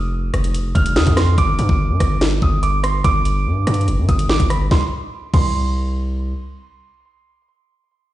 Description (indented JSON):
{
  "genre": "hip hop, drill",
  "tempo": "144 BPM",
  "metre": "4/4",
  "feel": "half-time",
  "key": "unclear",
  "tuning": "A4 = 440 Hz",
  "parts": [
    { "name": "dark concert grand piano", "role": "melody", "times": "0.0-5.9 s", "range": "B5 to F6", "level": "-24 LUFS", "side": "right 4 dB", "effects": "digital delay" },
    { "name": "distorted 808-style bass", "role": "bass", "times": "0.0-6.3 s", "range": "F1 to G2", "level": "-18 LUFS", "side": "equal", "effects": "distortion" },
    { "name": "drill drum kit", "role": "drums", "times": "0.3-5.5 s", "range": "crash cymbal, hi-hat, kick drum, rim click, snare drum", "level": "-18 LUFS", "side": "equal", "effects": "none" }
  ],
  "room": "digital ambience",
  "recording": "played on a big sound system in a bare room, stone room reverb, nothing above 10.4 kHz",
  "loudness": "-15 LUFS",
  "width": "side -15 dB against mid",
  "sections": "0.0-4.7 A section; 4.7-8.0 B section",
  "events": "none",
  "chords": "0.0 Ebsus2; 1.4 G5; 4.7 N.C."
}